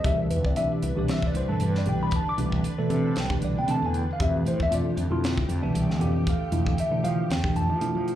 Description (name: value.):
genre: electric jazz fusion.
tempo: 116 BPM.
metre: 4/4.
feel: swing 54% on 16ths.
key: C major.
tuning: A4 = 439 Hz.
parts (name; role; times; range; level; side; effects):
mellow tine electric piano; accompaniment; 0.0-8.1 s; B2 to D6; -26 LUFS; equal; phaser, slapback echo.
fretless electric bass; bass; 0.0-8.2 s; C2 to F3; -27 LUFS; equal; none.
crisp fusion drum kit; drums; 0.0-8.2 s; hi-hat, kick drum, snare drum; -30 LUFS; equal; none.
soft string machine; sustained chords; 0.1-8.2 s; D3 to B4; -37 LUFS; left 1 dB; ensemble chorus.
room: light reverb.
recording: live gig heard through the venue's PA, club reverb.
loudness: -23 LUFS.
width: side -12 dB against mid.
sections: 0.0-8.2 A section.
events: none.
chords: 0.1 Cmaj9; 4.2 Fmaj9.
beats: | 0.06 0.57 1.09 1.61 | 2.13 2.65 3.17 3.69 | 4.21 4.72 5.24 5.75 | 6.27 6.79 7.30 7.82.